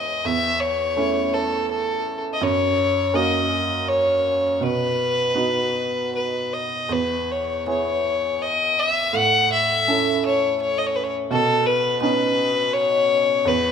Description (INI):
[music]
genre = celtic folk, Celtic slow air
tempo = 82 BPM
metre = 3/4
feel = rubato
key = unclear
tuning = A4 = 442 Hz
[part]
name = warm fiddle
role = melody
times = 0.0-13.7 s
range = A4 to F#5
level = -20 LUFS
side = left 2 dB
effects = none
[part]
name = clear upright piano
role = accompaniment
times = 0.0-13.7 s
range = E2 to A4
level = -25 LUFS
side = right 5 dB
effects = none
[sound]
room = moderate recital hall reverb, RT60 1.8 s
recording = minimal, uncompressed stereo recording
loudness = -19 LUFS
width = side -7 dB against mid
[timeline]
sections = 0.0-13.7 A section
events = none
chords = 0.3 A/E; 2.4 F#; 4.6 B; 6.9 E; 9.1 A; 11.3 Badd9